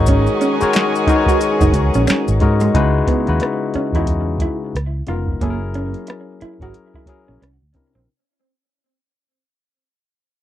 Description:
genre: R&B, neo-soul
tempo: 90 BPM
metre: 4/4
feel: swing 61% on 16ths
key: C# dorian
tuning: A4 = 442 Hz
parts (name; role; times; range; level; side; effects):
- barky tine electric piano; accompaniment; 0.0-8.1 s; C3 to D#5; -20 LUFS; left 6 dB; none
- muted studio string section; sustained chords; 0.0-2.7 s; G#4 to C#6; -26 LUFS; left 4 dB; none
- bright saxophone section; stabs; 0.0-2.4 s; D#3 to G#4; -22 LUFS; right 7 dB; none
- vintage muted fingered electric bass; bass; 0.0-8.1 s; E#1 to G#2; -18 LUFS; equal; none
- electric guitar through a small old amp; second line; 0.1-8.1 s; G#3 to F#4; -23 LUFS; right 3 dB; tape echo
- soft vintage rhythm box; drums; 0.1-7.9 s; finger snaps, hi-hat, kick drum, rim click, snare drum; -19 LUFS; equal; none
- maracas and finger snaps; percussion; 0.1-2.7 s; none; -31 LUFS; left 6 dB; none
room: little or no reverb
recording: dry, close 1970s-style studio recording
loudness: -15 LUFS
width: side -12 dB against mid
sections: 0.0-2.7 A section; 2.7-8.1 B section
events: fade-out 2.7-8.1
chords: 0.0 G#9sus4; 2.7 C#m11; 4.7 C#13; 5.4 F#7; 7.4 C9

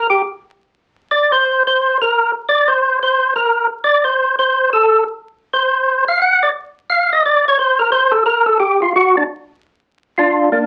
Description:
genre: jazz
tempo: 176 BPM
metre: 4/4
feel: swing 65% on 8ths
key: unclear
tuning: A4 = 441 Hz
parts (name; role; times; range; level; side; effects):
- percussive tonewheel organ; solo; 0.0-10.7 s; Bb3 to F#5; -14 LUFS; equal; slow rotary speaker, overdrive
room: moderate club reverb, RT60 0.5 s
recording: very old 78 rpm record, vinyl crackle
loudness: -15 LUFS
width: mono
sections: 0.0-9.6 A section; 9.6-10.7 B section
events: tonewheel organ solo 0.0-9.6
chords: 0.0 N.C.; 9.6 Bb

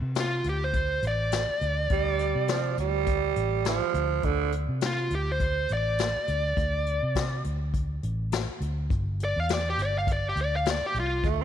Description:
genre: straight-eighth soul blues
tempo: 103 BPM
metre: 4/4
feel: swing 55% on 16ths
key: D minor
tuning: A4 = 439 Hz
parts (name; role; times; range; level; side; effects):
- vintage muted fingered electric bass; bass; 0.0-11.4 s; G1 to C3; -29 LUFS; equal; none
- vintage brush drum kit; drums; 0.1-11.4 s; hi-hat, kick drum, snare drum; -31 LUFS; left 3 dB; none
- smooth overdriven lead guitar; melody; 0.2-11.3 s; F4 to F5; -28 LUFS; equal; none
- growling tenor saxophone; second line; 1.9-4.5, 11.2-11.4 s; D3 to C4; -28 LUFS; right 11 dB; none
room: light reverb, small room ambience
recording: 1960s-style stereo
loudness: -25 LUFS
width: side -9 dB against mid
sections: 0.0-11.4 A section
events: none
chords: 0.0 D7(no3); 8.9 G5

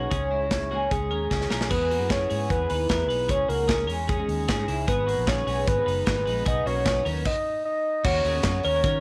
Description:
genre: jangly indie pop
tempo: 151 BPM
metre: 4/4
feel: straight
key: C# dorian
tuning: A4 = 439 Hz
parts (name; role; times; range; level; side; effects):
- soft octave-layered synth lead; melody; 0.0-9.0 s; G#4 to D#5; -28 LUFS; equal; chorus, slapback echo
- fingerpicked twelve-string acoustic guitar; accompaniment; 0.0-9.0 s; G#2 to B4; -36 LUFS; equal; none
- twelve-string electric guitar; arpeggios; 0.0-9.0 s; G#3 to B4; -36 LUFS; equal; slapback echo
- vintage muted fingered electric bass; bass; 0.0-9.0 s; F#1 to D#3; -32 LUFS; equal; none
- modern studio drum kit; drums; 0.1-8.9 s; crash cymbal, hi-hat, kick drum, snare drum; -30 LUFS; equal; none
room: light reverb, studio reverb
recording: none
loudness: -25 LUFS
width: mono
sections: 0.0-1.7 A section; 1.7-8.1 B section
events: drum fill 1.3-1.7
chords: 0.1 C#madd9; 1.7 E; 3.3 C#madd9; 4.9 G#m; 6.5 B; 8.1 D#m7

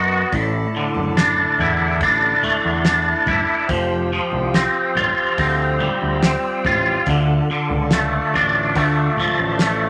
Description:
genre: psychedelic rock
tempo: 71 BPM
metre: 4/4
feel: straight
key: unclear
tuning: A4 = 440 Hz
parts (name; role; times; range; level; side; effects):
- pedal harmonium; sustained chords; 0.0-9.9 s; E4 to B5; -29 LUFS; equal; none
- twangy electric guitar; riff; 0.0-9.9 s; A2 to F#4; -20 LUFS; equal; rotary speaker
- growling picked electric bass; bass; 0.0-9.9 s; F1 to F#2; -25 LUFS; equal; overdrive
- damped 70s drum kit; drums; 0.3-9.8 s; hi-hat, kick drum, snare drum; -22 LUFS; equal; none
- congas; percussion; 0.9-9.4 s; none; -36 LUFS; equal; none
room: moderate studio reverb, RT60 0.6 s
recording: none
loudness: -18 LUFS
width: mono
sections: 0.0-9.9 A section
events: none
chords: 0.3 Asus4; 3.7 Fsus2; 7.1 Dm

